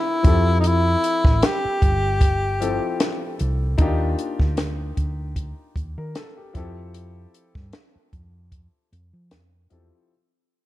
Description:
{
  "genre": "lush 1970s-style soul",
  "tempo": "76 BPM",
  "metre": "4/4",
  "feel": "swing 54% on 16ths",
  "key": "F major",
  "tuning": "A4 = 440 Hz",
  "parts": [
    { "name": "breathy tenor saxophone", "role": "melody", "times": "0.0-3.4 s", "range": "Eb4 to G4", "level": "-22 LUFS", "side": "left 1 dB", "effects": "none" },
    { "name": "warm baby grand piano", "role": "accompaniment", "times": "0.0-10.1 s", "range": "D3 to Bb4", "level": "-29 LUFS", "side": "left 4 dB", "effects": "tube saturation" },
    { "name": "hollow-body short-scale fingered electric bass", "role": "bass", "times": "0.2-9.9 s", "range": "G1 to F3", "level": "-23 LUFS", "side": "equal", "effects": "none" },
    { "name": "compact cocktail drum kit", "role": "drums", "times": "0.2-9.9 s", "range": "hi-hat, kick drum, snare drum", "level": "-21 LUFS", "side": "equal", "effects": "none" }
  ],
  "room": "small room ambience",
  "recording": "dark, warm production",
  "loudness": "-19 LUFS",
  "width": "side -15 dB against mid",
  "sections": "0.0-10.1 A section",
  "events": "fade-out 0.0-10.1",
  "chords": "0.2 Fmaj9; 3.8 Ebmaj7; 6.5 Fmaj9",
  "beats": "| 0.64 1.43 2.21 3.00 | 3.79 4.58 5.37 6.15 | 6.94 7.73 8.52 9.31"
}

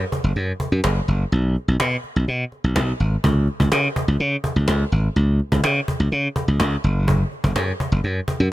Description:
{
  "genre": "dance-pop",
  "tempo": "125 BPM",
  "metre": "4/4",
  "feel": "straight",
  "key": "unclear",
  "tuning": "A4 = 445 Hz",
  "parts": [
    { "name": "glassy slap bass", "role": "bass", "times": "0.0-8.5 s", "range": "F#1 to C#3", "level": "-18 LUFS", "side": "equal", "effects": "none" },
    { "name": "cajon", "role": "drums", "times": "0.1-8.4 s", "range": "none", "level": "-25 LUFS", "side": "equal", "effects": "none" }
  ],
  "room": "small room ambience",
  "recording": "none",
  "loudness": "-18 LUFS",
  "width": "side -16 dB against mid",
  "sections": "0.0-3.2 A section; 3.2-8.5 B section",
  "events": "kick muted 1.3-3.2",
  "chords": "none",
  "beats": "0.36 0.84 | 1.32 1.80 2.28 2.76 | 3.24 3.72 4.20 4.68 | 5.16 5.64 6.12 6.60 | 7.08 7.56 8.04"
}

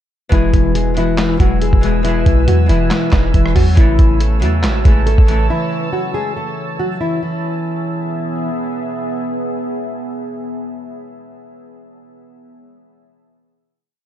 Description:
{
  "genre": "hip hop, trap",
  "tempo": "139 BPM",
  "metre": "4/4",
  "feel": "half-time",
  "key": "E major",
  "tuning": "A4 = 440 Hz",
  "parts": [
    { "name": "nylon-string guitar", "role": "melody", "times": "0.3-8.5 s", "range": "E3 to D#5", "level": "-20 LUFS", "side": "equal", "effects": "digital delay" },
    { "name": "Celtic harp", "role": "accompaniment", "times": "0.3-7.3 s", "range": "B2 to A4", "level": "-22 LUFS", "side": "left 4 dB", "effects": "none" },
    { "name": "deep dark ambient pad", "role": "sustained chords", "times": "1.0-11.4 s", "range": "B3 to E6", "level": "-25 LUFS", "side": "right 1 dB", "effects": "chorus, built-in reverb" },
    { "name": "clean 808-style bass", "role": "bass", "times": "0.3-5.5 s", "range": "E1 to E2", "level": "-15 LUFS", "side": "equal", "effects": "none" },
    { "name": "lo-fi sampler-style drum kit", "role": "drums", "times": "0.3-5.4 s", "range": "handclaps, hi-hat, kick drum, rim click, snare drum", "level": "-14 LUFS", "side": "equal", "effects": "vintage 12-bit sampler grit" }
  ],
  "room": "digital ambience",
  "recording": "dark, warm production",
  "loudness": "-13 LUFS",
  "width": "side -11 dB against mid",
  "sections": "0.3-7.2 hook; 7.2-10.7 final chord",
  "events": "none",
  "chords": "0.3 E; 3.8 A; 7.2 E",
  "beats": "| 0.32 0.75 1.18 1.61 | 2.05 2.48 2.91 3.34 | 3.77 4.21 4.64 5.07 | 5.50 5.93 6.36 6.79 | 7.23 7.66 8.09 8.52 | 8.95 9.38 9.82 10.25"
}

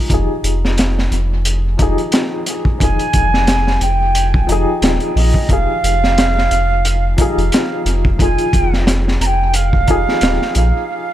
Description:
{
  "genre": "trip hop",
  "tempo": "89 BPM",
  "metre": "4/4",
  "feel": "swing 56% on 16ths",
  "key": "F minor",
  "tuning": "A4 = 440 Hz",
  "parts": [
    { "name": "felt-muted upright piano", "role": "accompaniment", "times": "0.0-11.1 s", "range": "F3 to Ab4", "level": "-21 LUFS", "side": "left 2 dB", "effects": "tremolo, low-pass filter, tape echo" },
    { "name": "warm sub bass", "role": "bass", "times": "0.1-10.7 s", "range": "Eb1 to Bb1", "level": "-16 LUFS", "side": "equal", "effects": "none" },
    { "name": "crunchy breakbeat drum kit", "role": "drums", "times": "0.1-10.7 s", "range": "hi-hat, kick drum, snare drum", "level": "-17 LUFS", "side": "equal", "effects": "tape echo" },
    { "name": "breathy mellow wooden flute", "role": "melody", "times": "2.8-11.1 s", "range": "Eb5 to Bb5", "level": "-19 LUFS", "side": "right 2 dB", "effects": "tape echo" }
  ],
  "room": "small room ambience",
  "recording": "echo-heavy mix",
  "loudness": "-12 LUFS",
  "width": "side -12 dB against mid",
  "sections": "0.0-11.1 A section",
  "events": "break 10.9",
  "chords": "0.0 Fm9",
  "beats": "| 0.10 0.78 1.45 2.12 | 2.80 3.47 4.15 4.82 | 5.50 6.17 6.84 7.52 | 8.19 8.87 9.54 10.21 | 10.89"
}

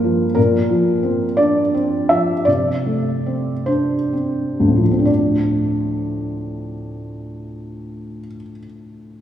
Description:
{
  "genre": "neoclassical minimalist piano",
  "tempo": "41-60 BPM (dotted quarters)",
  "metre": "6/8",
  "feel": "rubato",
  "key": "D minor",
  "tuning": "A4 = 439 Hz",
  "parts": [
    { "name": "felt-muted upright piano", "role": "solo", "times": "0.0-9.2 s", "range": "D2 to E5", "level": "-17 LUFS", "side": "equal", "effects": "none" }
  ],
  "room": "wet church reverb, RT60 2.8 s",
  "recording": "recorded in a church or concert hall, studio reverb",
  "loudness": "-16 LUFS",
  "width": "side -10 dB against mid",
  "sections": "0.0-5.1 A section; 5.1-9.2 B section",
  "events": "slowing down 0.0-5.1",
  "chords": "0.4 Bbadd9; 2.5 Amadd11/C",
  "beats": "| 0.37 1.38 | 2.47 3.68 | 5.07 6.48 | 7.89"
}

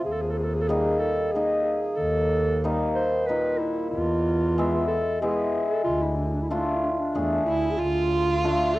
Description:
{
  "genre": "klezmer",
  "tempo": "93 BPM",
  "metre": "3/4",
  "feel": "straight",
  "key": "unclear",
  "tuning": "A4 = 438 Hz",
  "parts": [
    { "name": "dark clarinet", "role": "melody", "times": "0.0-8.8 s", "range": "D4 to C5", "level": "-26 LUFS", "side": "right 1 dB", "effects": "cassette tape" },
    { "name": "hammered dulcimer", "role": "accompaniment", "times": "0.0-8.8 s", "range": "Bb2 to E5", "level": "-26 LUFS", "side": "left 1 dB", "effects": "none" },
    { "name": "warm double bass", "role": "bass", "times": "0.1-8.8 s", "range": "D2 to E2", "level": "-29 LUFS", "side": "equal", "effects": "none" },
    { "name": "clear violin", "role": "second line", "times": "7.5-8.8 s", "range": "E4 to F4", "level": "-28 LUFS", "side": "right 4 dB", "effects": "none" }
  ],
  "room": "moderate spring reverb, RT60 1.9 s",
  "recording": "home recording on cassette",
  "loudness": "-22 LUFS",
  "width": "side -17 dB against mid",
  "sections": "0.0-7.8 A section; 7.8-8.8 A section",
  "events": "none",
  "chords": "0.1 Eb; 3.9 E; 5.9 Dm",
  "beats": "| 0.05 0.70 1.34 | 1.99 2.63 3.28 | 3.92 4.57 5.21 | 5.86 6.50 7.14 | 7.79 8.43"
}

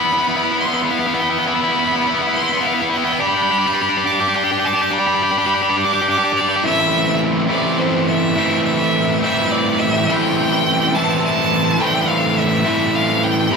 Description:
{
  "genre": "rock",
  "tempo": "105 BPM",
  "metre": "3/4",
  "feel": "straight",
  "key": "A minor",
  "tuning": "A4 = 437 Hz",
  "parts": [
    { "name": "bright violin", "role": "melody", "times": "0.0-13.6 s", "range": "C5 to D6", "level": "-20 LUFS", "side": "right 1 dB", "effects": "none" },
    { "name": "cranked stack guitar", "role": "riff", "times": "0.0-13.6 s", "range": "A2 to G4", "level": "-16 LUFS", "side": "equal", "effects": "overdrive" }
  ],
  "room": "wet studio reverb, RT60 0.9 s",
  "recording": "band playing live in one room",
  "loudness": "-15 LUFS",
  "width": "side -5 dB against mid",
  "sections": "0.0-6.6 A section; 6.6-13.6 B section",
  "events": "build-up 0.0-6.6",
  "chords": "0.0 Cmaj7/B (rootless); 3.2 G/D; 6.6 Am7",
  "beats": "0.31 0.89 | 1.47 2.05 2.62 | 3.20 3.77 4.35 | 4.93 5.50 6.07 | 6.65 7.22 7.79 | 8.36 8.94 9.51 | 10.08 10.65 11.22 | 11.80 12.37 12.94 | 13.52"
}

